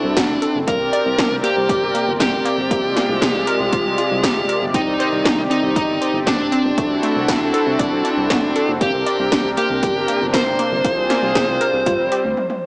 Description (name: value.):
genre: synthwave.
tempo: 118 BPM.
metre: 4/4.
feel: straight.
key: unclear.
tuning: A4 = 440 Hz.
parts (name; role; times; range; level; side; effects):
fuzz lead guitar; melody; 0.0-12.7 s; D4 to C5; -22 LUFS; equal; distortion, cassette tape.
brassy analog pad; sustained chords; 0.0-12.4 s; C3 to D5; -25 LUFS; equal; chorus, sidechain pumping.
analog pluck; arpeggios; 0.0-12.3 s; A3 to D5; -27 LUFS; equal; chorus, tape echo.
chorused synth bass; bass; 0.0-12.4 s; F1 to G2; -30 LUFS; equal; sidechain pumping.
80s electronic pad drums; drums; 0.2-12.6 s; hi-hat, snare drum, toms; -25 LUFS; equal; gated reverb on snare and toms, overdrive, cassette tape.
electronic kick drum; drums; 0.2-12.0 s; none; -26 LUFS; equal; overdrive, cassette tape.
room: moderate lush hall reverb, RT60 2.1 s.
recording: home recording on cassette, small speaker sound.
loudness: -18 LUFS.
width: mono.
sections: 0.0-12.7 A section.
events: break 12.4; drum fill 12.4.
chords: 0.0 D7; 0.7 Gm/C; 2.7 Bb7/C; 4.7 Cmadd9; 6.8 D7/C; 8.8 Gm/C; 10.8 Bb7/C; 11.9 G7sus4.